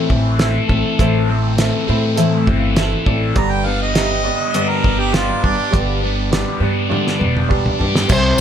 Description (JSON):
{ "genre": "folk rock and heartland rock", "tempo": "101 BPM", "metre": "4/4", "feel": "straight", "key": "unclear", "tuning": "A4 = 440 Hz", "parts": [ { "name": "picked steel-string acoustic guitar", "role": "accompaniment", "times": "0.0-8.4 s", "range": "G2 to C5", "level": "-22 LUFS", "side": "left 5 dB", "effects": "none" }, { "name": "warm upright piano", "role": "accompaniment", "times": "0.0-8.4 s", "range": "B3 to B5", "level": "-26 LUFS", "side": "right 8 dB", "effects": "none" }, { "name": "cranked stack guitar", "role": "riff", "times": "0.0-8.4 s", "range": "G2 to A4", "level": "-21 LUFS", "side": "equal", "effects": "overdrive, phaser" }, { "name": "upright bass", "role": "bass", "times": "0.1-8.3 s", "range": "E1 to A2", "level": "-20 LUFS", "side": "equal", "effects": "none" }, { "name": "cloth-damped thuddy drum kit", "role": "drums", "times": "0.1-8.2 s", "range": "crash cymbal, hi-hat, kick drum, snare drum, toms", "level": "-19 LUFS", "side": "equal", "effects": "none" }, { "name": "warm harmonica", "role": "second line", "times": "3.4-5.7 s", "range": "D4 to Bb5", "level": "-22 LUFS", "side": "right 3 dB", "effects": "tape echo" }, { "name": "bluesy overdriven lead guitar", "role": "melody", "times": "8.1-8.4 s", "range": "C5", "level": "-16 LUFS", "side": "left 1 dB", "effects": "distortion" }, { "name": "tambourine", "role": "percussion", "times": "8.1-8.4 s", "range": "none", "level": "-24 LUFS", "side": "left 11 dB", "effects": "none" } ], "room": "light reverb", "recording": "none", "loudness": "-14 LUFS", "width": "side -9 dB against mid", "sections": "0.0-8.1 A section", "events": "upright piano fill 1.6-3.4, 7.2-8.1; drum fill 6.9-8.1", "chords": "0.0 Am; 3.4 G", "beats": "0.40 | 0.99 1.58 2.18 2.77 | 3.36 3.96 4.55 5.14 | 5.73 6.33 6.92 7.51 | 8.10" }